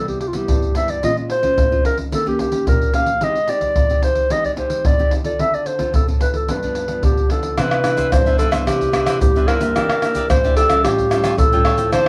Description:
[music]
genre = samba and choro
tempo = 110 BPM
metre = 4/4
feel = straight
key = C major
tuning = A4 = 440 Hz
[part]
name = dark clarinet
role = melody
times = 0.0-12.1 s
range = F4 to F5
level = -21 LUFS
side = equal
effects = none
[part]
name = nylon-string guitar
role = accompaniment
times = 0.0-12.1 s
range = F2 to A4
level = -28 LUFS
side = equal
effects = none
[part]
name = surdo, pandeiro, tube shaker and tamborim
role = percussion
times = 0.1-12.1 s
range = none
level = -21 LUFS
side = equal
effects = none
[part]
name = cavaquinho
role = accompaniment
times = 7.6-12.1 s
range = E4 to G5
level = -29 LUFS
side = equal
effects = none
[sound]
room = wet small room reverb, RT60 0.5 s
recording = band playing live in one room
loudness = -18 LUFS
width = mono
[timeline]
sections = 0.0-7.6 A section; 7.6-12.1 B section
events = none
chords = 0.0 Cmaj7; 1.0 Bbm7; 2.1 Eb7; 3.2 Abmaj7; 5.4 Dm7; 6.5 G7; 7.6 Cmaj9; 9.8 Em7b5; 10.8 A7alt

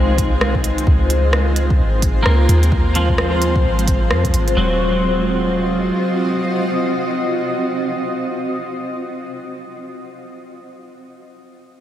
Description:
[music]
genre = future garage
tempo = 130 BPM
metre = 4/4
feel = swing 61% on 16ths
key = Eb dorian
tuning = A4 = 440 Hz
[part]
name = twelve-string electric guitar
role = accompaniment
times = 0.0-9.4 s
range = F3 to Bb3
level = -23 LUFS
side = right 1 dB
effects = ensemble chorus, sidechain pumping, low-pass filter, analog delay
[part]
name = granular cloud pad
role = sustained chords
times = 0.0-9.0 s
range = Ab3 to Eb5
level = -21 LUFS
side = left 1 dB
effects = built-in reverb, lush chorus, sidechain pumping
[part]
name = soft 808-style bass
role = bass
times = 0.0-5.9 s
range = Eb1 to F2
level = -18 LUFS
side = equal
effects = sidechain pumping
[part]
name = drifting glass-harmonics texture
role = texture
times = 0.0-4.6 s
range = C4 to C5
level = -34 LUFS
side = equal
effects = none
[part]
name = electronic kick drum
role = drums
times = 0.2-4.3 s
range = none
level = -18 LUFS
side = equal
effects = none
[part]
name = organic electronic drum kit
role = drums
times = 0.2-4.5 s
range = hi-hat, rim click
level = -25 LUFS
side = right 1 dB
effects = none
[sound]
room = moderate huge ambient reverb, RT60 8.1 s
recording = dreamy mix soaked in reverb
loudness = -15 LUFS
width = side -11 dB against mid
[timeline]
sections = 0.0-4.6 A section; 4.6-8.3 B section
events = none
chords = 0.0 Fm7; 0.9 Dbmaj7; 4.6 Ebm69

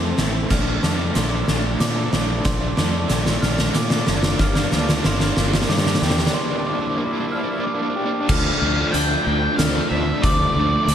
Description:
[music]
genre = post-rock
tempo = 93 BPM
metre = 3/4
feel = straight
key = unclear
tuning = A4 = 440 Hz
[part]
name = mellow woodwind section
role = sustained chords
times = 0.0-10.9 s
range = C4 to A5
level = -32 LUFS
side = left 1 dB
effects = none
[part]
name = electric guitar through a small old amp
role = arpeggios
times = 0.0-10.9 s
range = G2 to G4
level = -30 LUFS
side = left 1 dB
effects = none
[part]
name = glockenspiel with rubber mallets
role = arpeggios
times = 0.0-8.3 s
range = C6 to F6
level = -31 LUFS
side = right 3 dB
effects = digital delay
[part]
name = crunchy overdriven guitar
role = riff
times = 0.0-10.9 s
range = D3 to D4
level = -24 LUFS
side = equal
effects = tremolo
[part]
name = growling fingered electric bass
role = bass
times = 0.0-10.9 s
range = Gb1 to Bb2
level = -23 LUFS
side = equal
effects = overdrive
[part]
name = oversized low-tuned drum kit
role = drums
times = 0.2-10.9 s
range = crash cymbal, hi-hat, kick drum, snare drum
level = -21 LUFS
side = equal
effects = none
[part]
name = octave-fuzz lead guitar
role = melody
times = 8.3-10.9 s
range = D5 to G5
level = -22 LUFS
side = left 1 dB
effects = distortion, digital delay
[sound]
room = light reverb, studio reverb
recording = lossy compression artefacts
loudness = -18 LUFS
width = side -9 dB against mid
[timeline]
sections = 0.0-8.3 A section; 8.3-10.9 B section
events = build-up 0.0-8.3; drum fill 0.0-6.3; break 6.3-8.3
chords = 0.0 Fmaj7; 0.5 Bbmaj7; 4.4 Gm7; 8.3 Dm7

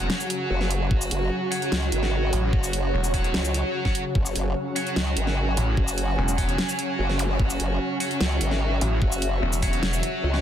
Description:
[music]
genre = heavy wobble dubstep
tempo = 148 BPM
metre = 4/4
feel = half-time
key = unclear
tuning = A4 = 441 Hz
[part]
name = supersaw chords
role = sustained chords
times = 0.0-10.4 s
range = C#3 to F#4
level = -31 LUFS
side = right 1 dB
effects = sidechain pumping, low-pass filter
[part]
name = distorted electric guitar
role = stabs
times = 0.0-10.4 s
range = F#4 to F#5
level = -31 LUFS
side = equal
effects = overdrive, ping-pong delay
[part]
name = snarling distorted saw bass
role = bass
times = 0.0-10.0 s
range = E1 to A1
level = -25 LUFS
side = equal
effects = distortion, overdrive
[part]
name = dubstep drum kit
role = drums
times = 0.0-10.4 s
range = hi-hat, shaker, snare drum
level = -29 LUFS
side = equal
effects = none
[part]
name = warbly tape-like pad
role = texture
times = 0.0-10.4 s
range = F#4 to G#5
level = -32 LUFS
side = equal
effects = chorus, built-in reverb, phaser, sidechain pumping
[part]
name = formant-sweep wobble bass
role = bass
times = 0.5-10.4 s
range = F#1 to C#2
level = -25 LUFS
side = equal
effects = chorus, overdrive
[part]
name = electronic kick drum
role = drums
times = 0.9-9.7 s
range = none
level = -25 LUFS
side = equal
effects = none
[part]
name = zap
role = sound effects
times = 7.2-7.3 s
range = none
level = -35 LUFS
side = equal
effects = none
[sound]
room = little or no reverb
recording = dense, heavily limited modern master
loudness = -22 LUFS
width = side -10 dB against mid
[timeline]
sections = 0.0-10.4 A section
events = kick drops out 9.8-10.4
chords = 0.0 F#5

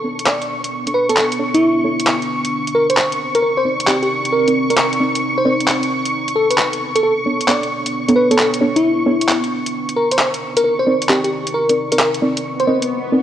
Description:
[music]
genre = UK garage, two-step garage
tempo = 133 BPM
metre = 4/4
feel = swing 67% on 16ths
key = unclear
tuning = A4 = 441 Hz
[part]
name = soft string machine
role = sustained chords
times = 0.0-12.9 s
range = C#6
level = -23 LUFS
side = equal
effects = ensemble chorus, cassette tape
[part]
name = deep mellow chord stab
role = stabs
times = 0.0-13.2 s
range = B3 to Eb5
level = -20 LUFS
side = right 1 dB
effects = chorus, cassette tape, tape echo
[part]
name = deep dark ambient pad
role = texture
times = 0.0-12.9 s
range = B3 to Bb5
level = -25 LUFS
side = right 1 dB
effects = chorus, built-in reverb, cassette tape
[part]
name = garage drum kit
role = drums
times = 0.2-12.9 s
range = handclaps, hi-hat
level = -19 LUFS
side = equal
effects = overdrive, small room ambience, cassette tape
[part]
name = bell-like FM electric piano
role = melody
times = 0.3-12.8 s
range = E4 to D5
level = -18 LUFS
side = equal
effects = chorus, phaser
[part]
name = swell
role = sound effects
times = 12.6-13.2 s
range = none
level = -23 LUFS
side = left 5 dB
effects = none
[sound]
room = moderate lush hall reverb, RT60 1.8 s, digital ambience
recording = home recording on cassette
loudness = -14 LUFS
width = side -10 dB against mid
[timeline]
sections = 0.0-13.2 A section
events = swell 12.6-13.2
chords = 0.0 Bm9; 2.3 Cm9; 6.1 Bm9; 9.5 Cm9

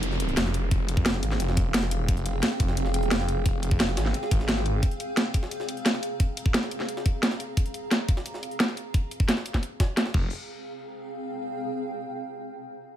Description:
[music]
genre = dark technical drum and bass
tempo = 175 BPM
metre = 4/4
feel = straight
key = F minor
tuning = A4 = 440 Hz
[part]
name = snarling distorted saw bass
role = bass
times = 0.0-4.8, 10.1-10.3 s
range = F1 to Ab1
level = -27 LUFS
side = equal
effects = distortion, overdrive
[part]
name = drum and bass drum kit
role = drums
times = 0.0-10.2 s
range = crash cymbal, hi-hat, snare drum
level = -26 LUFS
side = equal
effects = overdrive, low-pass filter on snare, studio reverb, low-pass filter on hats, low-pass filter on cymbals
[part]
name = jungle sampler-style drum kit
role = drums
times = 0.0-10.1 s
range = hi-hat, snare drum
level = -37 LUFS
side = right 1 dB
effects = overdrive, high-pass filter on hats, studio reverb, high-pass filter on snare
[part]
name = downlifter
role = sound effects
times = 0.0-2.1 s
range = none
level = -36 LUFS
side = equal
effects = none
[part]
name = granular cloud pad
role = texture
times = 0.1-11.6 s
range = C4 to Bb5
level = -34 LUFS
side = right 1 dB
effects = built-in reverb, sidechain pumping
[part]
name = electronic kick drum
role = drums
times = 0.7-10.2 s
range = none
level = -24 LUFS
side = equal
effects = studio reverb
[sound]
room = little or no reverb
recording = none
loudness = -24 LUFS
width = side -11 dB against mid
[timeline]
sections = 0.0-10.3 A section; 10.3-11.7 B section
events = fade-out on ambient pad 0.0-10.3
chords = 0.0 Fmadd9; 10.1 Fm; 10.3 Fmadd9

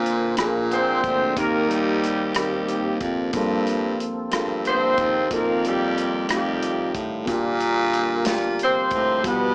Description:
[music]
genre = slow gospel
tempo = 61 BPM (dotted quarters)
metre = 6/8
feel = straight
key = Bb major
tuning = A4 = 438 Hz
[part]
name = dark upright piano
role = accompaniment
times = 0.0-9.5 s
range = G2 to Bb4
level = -27 LUFS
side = equal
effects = none
[part]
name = tonewheel organ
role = sustained chords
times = 0.0-9.5 s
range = Db3 to C5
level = -30 LUFS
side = equal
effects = slow rotary speaker, chorus vibrato
[part]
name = breathy baritone saxophone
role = bass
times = 0.0-9.5 s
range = D2 to B2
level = -24 LUFS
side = equal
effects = none
[part]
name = natural country drum kit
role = drums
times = 0.1-9.4 s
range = hi-hat, kick drum, rim click, snare drum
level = -29 LUFS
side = equal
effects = none
[part]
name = breathy tenor saxophone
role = melody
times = 0.7-9.5 s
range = G3 to C4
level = -25 LUFS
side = equal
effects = none
[part]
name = mellow horn section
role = melody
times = 0.7-9.5 s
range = Bb3 to C5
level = -25 LUFS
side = equal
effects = none
[sound]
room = light reverb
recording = small speaker sound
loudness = -20 LUFS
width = side -30 dB against mid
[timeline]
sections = 0.0-9.5 A section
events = none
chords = 0.4 Bb7; 1.4 Eb6; 3.3 Gm11; 5.3 F7sus4; 6.3 F9; 7.3 Bb6

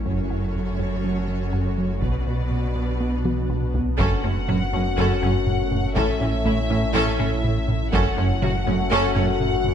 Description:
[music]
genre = cinematic, hybrid orchestral and electronic film score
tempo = 122 BPM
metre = 4/4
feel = straight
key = F# minor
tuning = A4 = 440 Hz
[part]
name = rich symphonic violin section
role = second line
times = 0.0-9.2 s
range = C#4 to D5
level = -30 LUFS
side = left 2 dB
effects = none
[part]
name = clear symphonic viola section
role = accompaniment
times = 0.0-9.2 s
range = B3 to F#4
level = -31 LUFS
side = right 2 dB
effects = none
[part]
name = glassy FM pad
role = sustained chords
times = 0.0-9.7 s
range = A3 to C#5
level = -32 LUFS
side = left 2 dB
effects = ensemble chorus, built-in reverb
[part]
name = punchy sub bass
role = bass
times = 0.0-9.7 s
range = F#1 to B1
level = -28 LUFS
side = equal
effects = none
[part]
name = rich symphonic cello section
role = bass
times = 0.0-9.2 s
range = F#2 to B2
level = -28 LUFS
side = right 2 dB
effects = none
[part]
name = resonant blip pluck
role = arpeggios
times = 0.1-9.3 s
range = F#3 to B4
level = -36 LUFS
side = left 2 dB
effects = none
[part]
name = rubbery square bass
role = riff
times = 0.1-9.7 s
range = F#2 to B3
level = -27 LUFS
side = right 2 dB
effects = none
[part]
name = taiko ensemble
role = drums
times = 0.1-9.7 s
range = none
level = -28 LUFS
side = left 1 dB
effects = none
[part]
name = clear studio violin section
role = melody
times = 4.0-9.7 s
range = E5 to F#5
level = -30 LUFS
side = left 2 dB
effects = none
[part]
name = bright trombone section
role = sustained chords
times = 4.0-9.7 s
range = F#2 to A3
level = -33 LUFS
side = right 3 dB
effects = none
[part]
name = mellow French horn section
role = sustained chords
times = 4.0-9.7 s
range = C#4 to F#4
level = -29 LUFS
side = left 9 dB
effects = none
[part]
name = rich symphonic double bass section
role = bass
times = 4.0-9.2 s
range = F#1 to A1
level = -29 LUFS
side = right 3 dB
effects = none
[sound]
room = light reverb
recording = dark, warm production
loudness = -20 LUFS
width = side -8 dB against mid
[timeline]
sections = 0.0-4.0 A section; 4.0-9.7 B section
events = drum fill 3.3-4.0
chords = 0.1 F#m; 2.0 Bm; 4.0 F#m; 6.0 A; 7.9 F#m

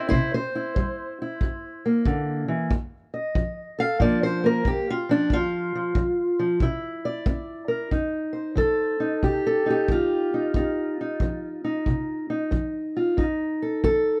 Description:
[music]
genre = acoustic country blues, solo or duo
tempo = 92 BPM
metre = 4/4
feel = swing 65% on 8ths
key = F mixolydian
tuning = A4 = 440 Hz
[part]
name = fingerpicked steel-string acoustic guitar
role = melody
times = 0.0-14.2 s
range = F2 to F5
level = -26 LUFS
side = equal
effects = none
[part]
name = kick drum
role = drums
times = 0.1-14.0 s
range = none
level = -28 LUFS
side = equal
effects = none
[sound]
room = small room ambience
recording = none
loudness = -25 LUFS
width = mono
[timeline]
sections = 0.0-7.9 A section; 7.9-14.2 B section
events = steel-string acoustic guitar solo 0.0-7.9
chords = 0.0 C7; 2.7 F7(no3); 4.0 Bb; 5.3 N.C.; 6.6 C; 7.9 F7

